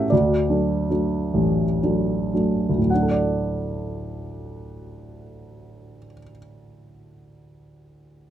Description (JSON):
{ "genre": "classical, lyrical solo piano", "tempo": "34-56 BPM (dotted quarters)", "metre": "6/8", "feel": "rubato", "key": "D major", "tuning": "A4 = 441 Hz", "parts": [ { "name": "warm grand piano", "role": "solo", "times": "0.0-8.3 s", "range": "A1 to G5", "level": "-20 LUFS", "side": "equal", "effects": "none" } ], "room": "light reverb", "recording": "dark, warm production", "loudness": "-19 LUFS", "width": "side -11 dB against mid", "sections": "0.0-2.9 A section; 2.9-8.3 B section", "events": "slowing down 0.0-2.9", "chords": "0.1 D" }